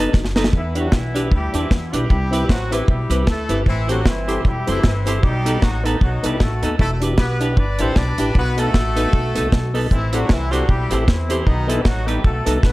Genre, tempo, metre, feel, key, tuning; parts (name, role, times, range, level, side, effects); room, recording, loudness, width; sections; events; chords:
ska; 154 BPM; 4/4; swing 57% on 8ths; E minor; A4 = 437 Hz
clean electric guitar; accompaniment; 0.0-12.6 s; D4 to C5; -26 LUFS; right 3 dB; tremolo, slapback echo
percussive tonewheel organ; stabs; 0.0-12.6 s; B3 to B4; -26 LUFS; left 2 dB; chorus vibrato, slow rotary speaker, slapback echo
upright bass; bass; 0.0-12.7 s; E1 to E2; -22 LUFS; equal
deep reggae drum kit; drums; 0.1-12.7 s; hi-hat, kick drum, snare drum; -17 LUFS; equal
clear horn section; melody; 0.6-12.7 s; D#3 to D5; -24 LUFS; equal; slapback echo
light reverb, studio reverb; -16 LUFS; side -19 dB against mid
0.5-12.7 A section
drum fill 0.1-0.5
0.0 B7; 0.5 Em7; 2.1 Cmaj7; 3.7 Am7; 5.2 B7; 6.8 Em7; 8.4 B7; 9.9 Am7; 11.5 B7